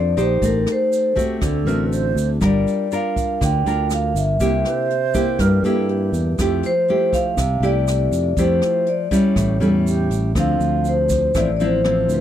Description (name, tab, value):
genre	bossa nova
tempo	121 BPM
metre	4/4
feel	straight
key	F major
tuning	A4 = 439 Hz
part	vibraphone with medium mallets	melody	0.0-12.2 s	Bb4 to G5	-20 LUFS	left 1 dB	none
part	nylon-string guitar	accompaniment	0.0-12.2 s	G2 to C5	-21 LUFS	left 1 dB	none
part	fingered electric bass	bass	0.0-12.2 s	G1 to G2	-21 LUFS	equal	none
part	jazz brush drum kit	drums	0.2-12.2 s	hi-hat, kick drum, rim click	-26 LUFS	equal	none
part	tube shaker	percussion	0.2-12.2 s	none	-37 LUFS	right 12 dB	none
part	bright wooden-headed alto flute	second line	1.1-6.5, 9.6-10.3 s	G4 to C5	-25 LUFS	right 10 dB	none
room	light reverb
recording	dry, close 1970s-style studio recording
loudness	-16 LUFS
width	side -10 dB against mid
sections	0.0-10.4 A section; 10.4-12.2 B section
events	none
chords	0.4 Am7b5; 1.4 D7; 2.4 Gm7; 4.4 C7; 6.4 Fmaj9; 9.4 A7; 10.4 Dm9